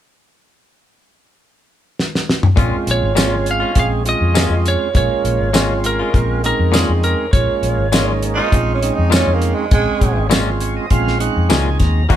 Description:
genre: straight-eighth soul blues.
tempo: 101 BPM.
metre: 4/4.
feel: straight.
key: Bb minor.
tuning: A4 = 440 Hz.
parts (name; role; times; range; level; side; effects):
damped 70s drum kit; drums; 2.0-12.2 s; hi-hat, kick drum, snare drum, tambourine, toms; -17 LUFS; equal; none.
tonewheel organ; accompaniment; 2.6-12.2 s; Gb3 to Bb5; -21 LUFS; right 5 dB; slow rotary speaker, overdrive.
direct-recorded clean electric guitar; stabs; 2.6-12.2 s; Bb2 to Gb4; -22 LUFS; left 6 dB; none.
vintage muted fingered electric bass; bass; 2.6-12.2 s; Ab1 to F2; -19 LUFS; left 1 dB; none.
lightly driven lead guitar; melody; 2.9-8.5 s; Ab4 to F5; -20 LUFS; right 2 dB; none.
growling tenor saxophone; second line; 8.3-10.3 s; Ab3 to Eb4; -21 LUFS; right 4 dB; none.
room: moderate large studio reverb, RT60 1.5 s.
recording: band playing live in one room.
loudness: -14 LUFS.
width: side -11 dB against mid.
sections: 0.2-2.6 A section; 2.6-12.2 B section.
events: drum fill 2.0-2.6; tonewheel organ fill 10.3-12.1.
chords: 0.2 N.C.; 2.6 Bbm7.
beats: | 0.19 0.78 1.38 1.97 | 2.57 3.16 3.76 4.35 | 4.95 5.54 6.14 6.73 | 7.33 7.92 8.52 9.12 | 9.71 10.31 10.90 11.50 | 12.10.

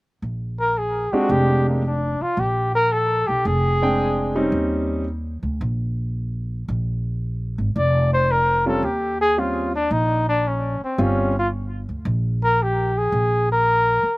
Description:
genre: jazz, small-group swing and bop.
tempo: 112 BPM.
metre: 4/4.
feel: swing 68% on 8ths.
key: Bb mixolydian.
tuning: A4 = 440 Hz.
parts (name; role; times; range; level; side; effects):
upright bass; bass; 0.2-14.1 s; F1 to Eb2; -23 LUFS; equal; none.
warm flugelhorn; melody; 0.6-4.5, 7.8-14.2 s; Bb3 to D5; -20 LUFS; left 1 dB; slapback echo.
clear concert grand piano; accompaniment; 1.1-5.0, 8.7-11.3 s; G3 to G5; -21 LUFS; right 1 dB; none.
room: little or no reverb.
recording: recorded outdoors, with no room sound.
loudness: -19 LUFS.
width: side -20 dB against mid.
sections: 0.2-14.2 A section.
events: none.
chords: 0.2 Bb13; 4.5 Eb6; 6.7 Bb5; 8.8 Eb13; 13.1 Bb7(no3).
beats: | 0.24 0.77 1.31 1.85 | 2.38 2.92 3.46 3.99 | 4.53 5.07 5.61 6.14 | 6.68 7.22 7.75 8.29 | 8.83 9.37 9.90 10.44 | 10.98 11.52 12.06 12.59 | 13.13 13.67.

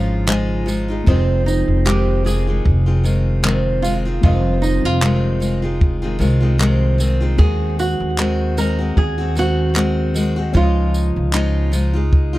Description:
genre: acoustic pop.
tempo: 76 BPM.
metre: 4/4.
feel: swing 55% on 16ths.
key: F minor.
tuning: A4 = 438 Hz.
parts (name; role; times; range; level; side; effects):
nylon-string guitar; melody; 0.0-12.1 s; C4 to Bb4; -24 LUFS; right 4 dB; tape echo.
felt-muted upright piano; accompaniment; 0.0-12.4 s; G3 to F5; -34 LUFS; left 5 dB; none.
picked steel-string acoustic guitar; accompaniment; 0.0-12.4 s; F2 to Gb4; -21 LUFS; left 1 dB; none.
upright bass; bass; 0.0-12.4 s; F1 to Eb2; -18 LUFS; equal; none.
compact cocktail drum kit; drums; 0.3-12.3 s; handclaps, kick drum, tambourine; -18 LUFS; equal; none.
group handclap; percussion; 1.9-11.5 s; none; -31 LUFS; right 5 dB; none.
room: little or no reverb.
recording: dry, close 1970s-style studio recording.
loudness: -15 LUFS.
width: side -17 dB against mid.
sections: 0.0-12.4 A section.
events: none.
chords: 0.0 Dbadd9; 1.1 Fm7; 7.4 Ab7/Eb; 10.5 Dbadd9.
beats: 0.28 | 1.07 1.86 2.65 3.44 | 4.23 5.02 5.81 6.60 | 7.39 8.18 8.97 9.76 | 10.55 11.34 12.13.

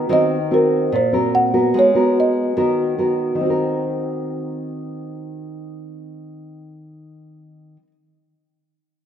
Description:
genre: bossa nova.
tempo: 146 BPM.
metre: 4/4.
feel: straight.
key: Eb minor.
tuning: A4 = 440 Hz.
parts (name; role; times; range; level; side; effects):
nylon-string guitar; accompaniment; 0.0-7.9 s; Bb2 to Bb4; -19 LUFS; equal; none.
folk marimba with medium mallets; melody; 0.1-2.6 s; Bb4 to Gb5; -18 LUFS; right 1 dB; none.
room: moderate lush hall reverb, RT60 2.4 s.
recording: rough home demo mix.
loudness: -16 LUFS.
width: side -9 dB against mid.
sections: 0.0-3.4 A section; 3.4-6.7 B section.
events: marimba solo 0.0-3.4.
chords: 0.1 Ebm6; 1.7 Abm9; 3.4 Ebm6.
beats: | 0.09 0.50 0.91 1.32 | 1.74 2.15 2.56 2.97 | 3.38 3.79 4.20 4.62 | 5.03 5.44 5.85 6.26.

